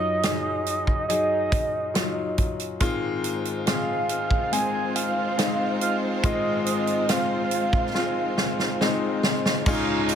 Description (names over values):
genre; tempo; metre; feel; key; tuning
pop ballad; 70 BPM; 4/4; straight; unclear; A4 = 440 Hz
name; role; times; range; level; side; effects
soft octave-layered synth lead; melody; 0.0-10.2 s; Eb5 to Ab5; -26 LUFS; right 2 dB; chorus, digital delay
warm concert grand piano; accompaniment; 0.0-10.2 s; Db2 to Ab4; -27 LUFS; left 4 dB; none
natural country drum kit; drums; 0.2-10.2 s; crash cymbal, hi-hat, kick drum, snare drum; -25 LUFS; right 1 dB; none
warm studio string section; sustained chords; 2.8-10.2 s; Ab3 to Db5; -31 LUFS; right 3 dB; none
dark studio cello section; second line; 9.7-10.2 s; Eb4; -28 LUFS; right 5 dB; digital delay
tambourine; percussion; 9.7-10.2 s; none; -37 LUFS; right 14 dB; none
room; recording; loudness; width
light reverb, small room ambience; none; -22 LUFS; side -8 dB against mid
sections
0.0-9.7 A section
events
drum fill 8.0-9.7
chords
0.0 Ebmadd9/Gb; 2.8 Ab6